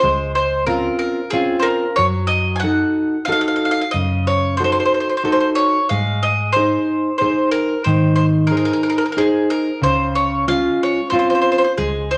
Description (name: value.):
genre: italian folk, Italian serenade.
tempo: 92 BPM.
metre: 3/4.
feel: straight.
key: Db major.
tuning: A4 = 442 Hz.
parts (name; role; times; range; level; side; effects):
bowl-back mandolin; melody; 0.0-12.2 s; Ab4 to Ab5; -21 LUFS; equal; none.
nylon-string guitar; accompaniment; 0.0-12.2 s; Db3 to C5; -21 LUFS; equal; none.
hollow-body short-scale fingered electric bass; bass; 0.0-12.2 s; Db2 to Ab2; -26 LUFS; equal; none.
room: wet large studio reverb, RT60 1.1 s.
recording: none.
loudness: -18 LUFS.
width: mono.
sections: 0.0-12.2 A section.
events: none.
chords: 0.0 Dbmaj7; 2.0 Gbm6; 5.9 Ab; 9.8 Dbmaj7.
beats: | 0.02 0.67 1.32 | 1.98 2.63 3.29 | 3.94 4.59 5.25 | 5.91 6.56 7.22 | 7.87 8.52 9.17 | 9.82 10.47 11.12 | 11.77.